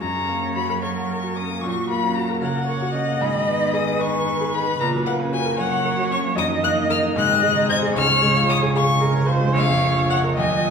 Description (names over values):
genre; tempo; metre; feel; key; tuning
quick classical-period movement for piano quartet; 75 BPM (dotted quarters); 6/8; rubato; F# major, Db major from 6.4 s; A4 = 437 Hz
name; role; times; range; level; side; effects
rich violin; melody; 0.0-10.7 s; F5 to Ab6; -23 LUFS; left 6 dB; none
rich cello; second line; 0.0-10.7 s; C3 to F#3; -25 LUFS; right 4 dB; none
bright grand piano; accompaniment; 0.0-10.7 s; Bb1 to Db6; -24 LUFS; left 1 dB; none
warm viola; accompaniment; 0.0-10.7 s; F#4 to Eb5; -24 LUFS; right 3 dB; none
room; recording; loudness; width
wet recital hall reverb, RT60 1.3 s; recorded in a church or concert hall; -18 LUFS; side -6 dB against mid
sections
0.0-10.7 A section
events
none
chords
0.0 F#; 1.6 F#/A#; 3.2 G#m; 4.8 F#/A#; 6.4 Ebm/Gb; 7.2 Ab7; 8.0 Db; 9.6 Bbm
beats
| 0.01 0.82 | 1.63 2.42 | 3.21 4.00 | 4.80 5.58 | 6.37 7.17 | 7.96 8.76 | 9.55 10.38